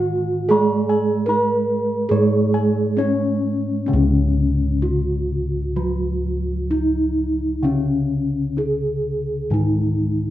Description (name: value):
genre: gamelan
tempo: 64-80 BPM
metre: 4/4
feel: straight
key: Db slendro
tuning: A4 = 440 Hz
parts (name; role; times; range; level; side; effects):
- gamelan-type bronze metallophone; melody; 0.0-10.3 s; Db4 to Cb5-45c; -21 LUFS; equal; none
- gamelan-type bronze metallophone; accompaniment; 0.0-10.3 s; Db3 to Ab3+25c; -24 LUFS; right 2 dB; none
- gamelan-type bossed gongs; arpeggios; 0.0-3.5 s; Db5 to Cb6-45c; -27 LUFS; left 2 dB; none
- gamelan-type bossed gongs; bass; 0.0-10.3 s; Db2 to Ab4+25c; -23 LUFS; left 1 dB; none
room: moderate recital hall reverb, RT60 1.3 s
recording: dark, warm production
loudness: -18 LUFS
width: side -13 dB against mid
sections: 0.0-3.9 A section; 3.9-10.3 B section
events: none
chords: none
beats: | 0.50 1.28 2.11 2.98 | 3.89 4.83 5.77 6.71 | 7.64 8.58 9.52